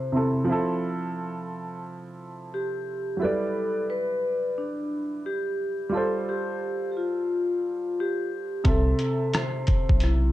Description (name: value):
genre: lo-fi hip hop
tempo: 88 BPM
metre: 4/4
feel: swing 63% on 16ths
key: C major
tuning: A4 = 443 Hz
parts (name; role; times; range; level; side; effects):
- vibraphone with medium hard mallets; melody; 0.0-10.3 s; D4 to C5; -28 LUFS; left 1 dB; low-pass filter
- warm upright piano; accompaniment; 0.0-10.3 s; C3 to E5; -29 LUFS; right 1 dB; cassette tape, low-pass filter
- dusty soul sampler-style drum kit; drums; 8.6-10.2 s; hi-hat, kick drum, rim click; -23 LUFS; equal; vintage 12-bit sampler grit
- saturated sub bass; bass; 8.7-10.3 s; B1 to C2; -22 LUFS; equal; none
room: moderate studio ambience, RT60 0.5 s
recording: dark, warm production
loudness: -24 LUFS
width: side -15 dB against mid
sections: 0.0-8.7 A section; 8.7-10.3 B section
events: none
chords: 0.5 Fmaj7; 3.2 Em7/G; 5.9 G9sus4; 8.7 C6